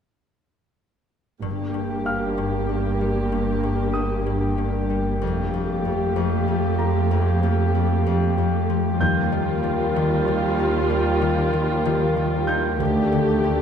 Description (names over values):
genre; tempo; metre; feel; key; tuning
cinematic, suspense film score; 95 BPM; 3/4; straight; G minor; A4 = 441 Hz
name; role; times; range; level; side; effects
muted symphonic viola section; accompaniment; 1.4-13.6 s; G3 to G4; -26 LUFS; right 2 dB; none
glass harmonica; sustained chords; 1.4-13.6 s; D4 to G5; -28 LUFS; equal; none
concert harp; riff; 1.4-13.6 s; F2 to Eb4; -26 LUFS; left 7 dB; none
muted studio cello section; bass; 1.4-13.6 s; D2 to G2; -28 LUFS; right 3 dB; none
muted symphonic double bass section; bass; 1.4-2.0, 5.2-5.8, 9.0-9.6, 12.8-13.4 s; F1 to Eb2; -31 LUFS; right 4 dB; none
deep rumbling drone; drone; 1.4-13.6 s; G1 to F2; -26 LUFS; right 1 dB; built-in reverb, phaser
clear concert grand piano; texture; 2.1-13.6 s; F5 to G6; -31 LUFS; right 2 dB; none
room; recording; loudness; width
moderate scoring stage reverb, RT60 1.9 s; none; -20 LUFS; side -8 dB against mid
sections
1.4-13.6 A section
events
none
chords
1.4 Gm; 5.2 Fadd9; 9.0 Ebadd9; 12.8 Dsus4